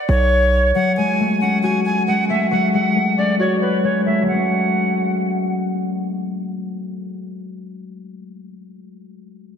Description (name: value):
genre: hip hop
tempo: 136 BPM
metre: 4/4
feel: half-time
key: F# minor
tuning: A4 = 443 Hz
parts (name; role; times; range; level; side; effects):
- breathy bright jazz flute; melody; 0.1-5.6 s; B4 to G#5; -20 LUFS; right 1 dB; ping-pong delay
- distorted 808-style bass; bass; 0.1-0.7 s; B1; -16 LUFS; right 1 dB; distortion
- concert harp; accompaniment; 0.7-8.6 s; F#3 to F#4; -20 LUFS; left 2 dB; none
room: wet lush hall reverb, RT60 2.8 s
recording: dreamy mix soaked in reverb, low-pass filter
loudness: -16 LUFS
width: side -7 dB against mid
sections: 0.8-4.3 A section; 4.3-7.8 B section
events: filter sweep 0.8-4.3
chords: 0.0 Bsus2; 0.8 F#madd9